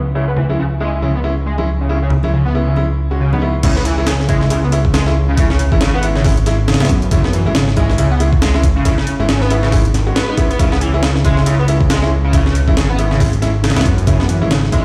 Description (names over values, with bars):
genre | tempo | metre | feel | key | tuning
breakbeat, breaks | 138 BPM | 4/4 | swing 58% on 16ths | C# minor | A4 = 440 Hz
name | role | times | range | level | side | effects
fat analog bass | bass | 0.0-14.8 s | G#1 to F#2 | -18 LUFS | equal | tube saturation
overdriven synth lead | riff | 0.1-14.8 s | C#3 to B3 | -23 LUFS | equal | distortion, tube saturation, ensemble chorus, vintage 12-bit sampler grit, delay
clear concert grand piano | stabs | 0.2-14.8 s | G#3 to F#4 | -23 LUFS | equal | delay
congas | percussion | 0.4-3.4 s | none | -25 LUFS | equal | none
breakbeat sampler-style drum kit | drums | 3.6-14.8 s | crash cymbal, hi-hat, kick drum, snare drum | -18 LUFS | equal | none
room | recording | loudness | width
light reverb | played on a big sound system in a bare room, stone room reverb, low-pass filter | -15 LUFS | mono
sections
0.0-3.6 A section; 3.6-14.8 B section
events
drop 3.6-14.8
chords
0.0 C#m